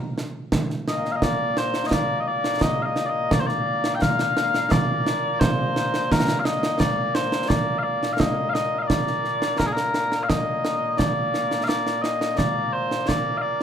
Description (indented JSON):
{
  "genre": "scottish traditional, Scottish pipe music",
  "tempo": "86 BPM",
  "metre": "4/4",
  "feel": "straight",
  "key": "Bb major",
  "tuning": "A4 = 440 Hz",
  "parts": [
    { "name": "concert snare drum and concert bass drum", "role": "drums", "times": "0.2-13.6 s", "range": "none", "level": "-24 LUFS", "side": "right 2 dB", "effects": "none" },
    { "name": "mellow small bagpipes", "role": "melody", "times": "0.9-13.6 s", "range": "Bb2 to G5", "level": "-23 LUFS", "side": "left 1 dB", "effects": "none" }
  ],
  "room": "light reverb",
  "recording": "close, detailed microphones",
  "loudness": "-20 LUFS",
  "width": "side -8 dB against mid",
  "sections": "0.0-1.2 A section; 1.2-13.6 B section",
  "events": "none",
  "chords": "none"
}